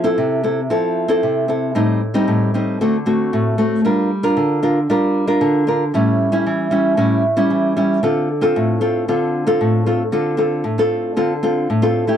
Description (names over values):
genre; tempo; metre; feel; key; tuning
samba; 115 BPM; 4/4; straight; D minor; A4 = 441 Hz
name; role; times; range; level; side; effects
nylon-string guitar; solo; 0.0-12.2 s; A2 to Bb4; -15 LUFS; equal; none
room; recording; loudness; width
light reverb; dry, close 1970s-style studio recording; -15 LUFS; side -9 dB against mid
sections
0.0-12.2 A section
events
none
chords
0.0 Fmaj7; 1.8 Am7b5; 2.8 D7; 3.8 Gm7; 5.9 A7; 8.0 Dm7